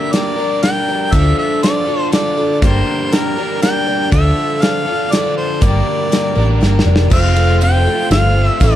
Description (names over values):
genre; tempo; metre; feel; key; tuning
folk rock and heartland rock; 120 BPM; 3/4; straight; unclear; A4 = 438 Hz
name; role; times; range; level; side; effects
warm harmonica; melody; 0.0-8.8 s; Bb4 to G5; -19 LUFS; equal; slapback echo
picked twelve-string acoustic guitar; accompaniment; 0.0-8.8 s; G2 to Bb4; -21 LUFS; left 3 dB; none
overdriven electric guitar; riff; 0.0-8.8 s; G2 to Bb4; -20 LUFS; right 1 dB; none
natural country drum kit; drums; 0.1-8.7 s; crash cymbal, hi-hat, kick drum, ride cymbal, snare drum; -16 LUFS; equal; none
hollow-body short-scale fingered electric bass; bass; 1.1-8.8 s; F1 to D2; -13 LUFS; equal; none
mellow tonewheel organ; sustained chords; 7.1-8.8 s; A4 to C#6; -27 LUFS; equal; slow rotary speaker
tambourine; percussion; 7.1-8.7 s; none; -34 LUFS; right 6 dB; none
room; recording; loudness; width
little or no reverb; dark, warm production; -12 LUFS; side -12 dB against mid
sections
0.0-7.1 A section; 7.1-8.8 B section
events
drum fill 6.6-7.1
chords
0.0 Gm; 1.1 Dm; 2.6 Gm; 4.1 Dm; 5.6 Gm; 7.1 F